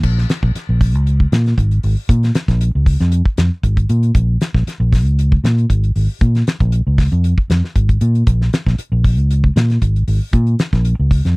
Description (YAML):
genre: afrobeat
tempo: 116 BPM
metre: 4/4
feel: straight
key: Bb minor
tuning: A4 = 438 Hz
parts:
  - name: fingered electric bass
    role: bass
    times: 0.0-11.4 s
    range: Ab1 to Bb2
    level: -13 LUFS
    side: equal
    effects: none
  - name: damped 70s drum kit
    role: drums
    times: 0.0-11.4 s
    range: crash cymbal, hi-hat, kick drum, snare drum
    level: -16 LUFS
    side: equal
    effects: none
room: little or no reverb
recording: dry, close 1970s-style studio recording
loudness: -13 LUFS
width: side -29 dB against mid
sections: 0.0-11.4 A section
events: none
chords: none